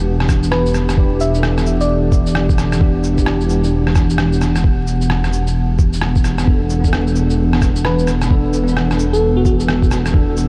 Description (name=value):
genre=future garage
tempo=131 BPM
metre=4/4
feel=swing 62% on 16ths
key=E minor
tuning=A4 = 440 Hz
part: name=bell-like tine electric piano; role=accompaniment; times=0.0-10.5 s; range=E3 to B4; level=-23 LUFS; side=equal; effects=ensemble chorus, sidechain pumping, delay
part: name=warbly tape-like pad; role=sustained chords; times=0.0-10.5 s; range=E3 to F#5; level=-25 LUFS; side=equal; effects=chorus, built-in reverb, sidechain pumping
part: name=dark detuned saw bass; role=bass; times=0.0-10.5 s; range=E1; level=-20 LUFS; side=equal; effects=tube saturation, sidechain pumping
part: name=electronic rim click, cabasa and shaker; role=drums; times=0.2-10.5 s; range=none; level=-26 LUFS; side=equal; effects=overdrive, vintage 12-bit sampler grit
part: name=electronic kick drum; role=drums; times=0.3-10.3 s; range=none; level=-17 LUFS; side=equal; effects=overdrive, vintage 12-bit sampler grit
part: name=bell-like FM electric piano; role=melody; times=0.5-2.4, 7.9-9.5 s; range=F#4 to E5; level=-25 LUFS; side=equal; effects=chorus, phaser, cassette tape, delay
room=moderate huge ambient reverb, RT60 4.0 s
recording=dreamy mix soaked in reverb, vinyl crackle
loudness=-15 LUFS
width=mono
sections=0.0-10.5 A section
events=none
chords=0.0 Em7; 6.5 Bm7/E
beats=0.06 0.52 | 0.98 1.44 1.89 2.35 | 2.81 3.27 3.73 4.18 | 4.64 5.10 5.56 6.01 | 6.47 6.93 7.39 7.85 | 8.30 8.76 9.22 9.68 | 10.14